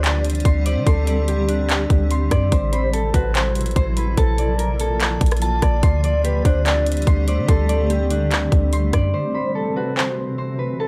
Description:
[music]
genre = hip hop, atmospheric cloud-rap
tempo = 145 BPM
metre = 4/4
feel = half-time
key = A dorian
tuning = A4 = 442 Hz
[part]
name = mellow electric guitar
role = melody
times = 0.0-10.9 s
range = G4 to D5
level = -29 LUFS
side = equal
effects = phaser, low-pass filter, analog delay
[part]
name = granular cloud pad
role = sustained chords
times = 0.0-10.9 s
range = B2 to G4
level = -28 LUFS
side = equal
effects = built-in reverb, sidechain pumping
[part]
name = concert harp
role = arpeggios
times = 0.0-10.9 s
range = D4 to C6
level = -28 LUFS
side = equal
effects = low-pass filter, analog delay
[part]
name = clean 808-style bass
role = bass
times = 0.0-9.1 s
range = A1 to D3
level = -22 LUFS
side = equal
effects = none
[part]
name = trap drum kit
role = drums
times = 0.0-10.1 s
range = handclaps, hi-hat, kick drum, rim click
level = -22 LUFS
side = equal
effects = none
[sound]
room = digital ambience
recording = dry, gritty hardware recording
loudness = -19 LUFS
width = mono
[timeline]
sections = 0.0-9.1 A section; 9.1-10.9 B section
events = none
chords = 0.0 D7sus4; 2.5 Am69; 4.2 Bbmaj7; 5.8 D7sus4; 9.1 Am69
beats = 0.04 0.45 | 0.86 1.28 1.69 2.11 | 2.52 2.93 3.35 3.76 | 4.17 4.59 5.00 5.42 | 5.83 6.24 6.66 7.07 | 7.49 7.90 8.31 8.73 | 9.14 9.55 9.97 10.38 | 10.80

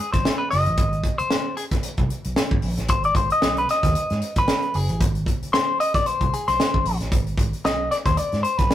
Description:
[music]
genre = funk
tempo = 114 BPM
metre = 4/4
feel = swing 56% on 16ths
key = Ab mixolydian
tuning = A4 = 440 Hz
[part]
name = clean electric guitar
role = accompaniment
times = 0.0-8.7 s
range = Ab4 to Eb5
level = -22 LUFS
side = left 2 dB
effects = wah
[part]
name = vintage muted fingered electric bass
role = bass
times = 0.1-8.7 s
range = Gb1 to Ab2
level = -26 LUFS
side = right 1 dB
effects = none
[part]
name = tight funk drum kit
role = drums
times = 0.1-8.7 s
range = hi-hat, kick drum, snare drum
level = -23 LUFS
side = equal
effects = none
[sound]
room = light reverb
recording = rough rehearsal-room recording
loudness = -19 LUFS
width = side -12 dB against mid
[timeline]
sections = 0.0-8.7 A section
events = clean electric guitar solo 0.0-8.7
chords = 0.0 Ab(#9)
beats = 0.25 | 0.78 1.31 1.84 2.37 | 2.90 3.42 3.95 4.48 | 5.01 5.54 6.07 6.59 | 7.12 7.65 8.18 8.71

